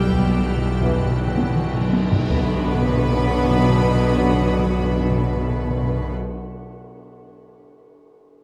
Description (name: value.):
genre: cinematic, suspense film score.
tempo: 82 BPM.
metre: 5/4.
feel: straight.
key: B minor.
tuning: A4 = 440 Hz.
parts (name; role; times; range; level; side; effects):
warm symphonic violin section; melody; 0.0-6.1 s; G5 to B5; -36 LUFS; equal; none.
warm symphonic violin section; second line; 0.0-6.1 s; G4 to B4; -32 LUFS; equal; none.
dark studio viola section; accompaniment; 0.0-6.1 s; G3 to B3; -31 LUFS; equal; none.
icy glass pad; sustained chords; 0.0-6.1 s; D4 to G5; -35 LUFS; equal; chorus, built-in reverb.
rich symphonic double bass section; bass; 0.0-6.1 s; B1; -26 LUFS; equal; none.
warm studio cello section; bass; 0.0-6.1 s; B2; -29 LUFS; equal; none.
bowed-like drone; drone; 0.0-6.1 s; B1; -34 LUFS; equal; none.
timpani; percussion; 0.0-6.1 s; B2; -28 LUFS; equal; none.
dark studio violin section; texture; 0.0-5.5 s; D6 to E#6; -42 LUFS; equal; none.
taiko ensemble; drums; 0.1-3.7 s; none; -27 LUFS; equal; none.
mellow French horn section; sustained chords; 0.8-6.1 s; B3 to E4; -32 LUFS; equal; none.
warm trombone section; sustained chords; 0.8-6.1 s; B2 to F#3; -30 LUFS; equal; none.
tam-tam; percussion; 2.3-5.2 s; none; -36 LUFS; equal; none.
room: light reverb.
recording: close, detailed microphones.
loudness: -20 LUFS.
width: mono.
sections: 0.0-2.3 A section; 2.3-5.9 B section.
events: timpani fill 0.0-2.3; drum fill 1.4-2.3; band accent 2.3-3.0.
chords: 0.0 Em/B; 2.3 Bm.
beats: 0.07 0.82 1.56 | 2.31 3.03 3.76 4.48 5.20.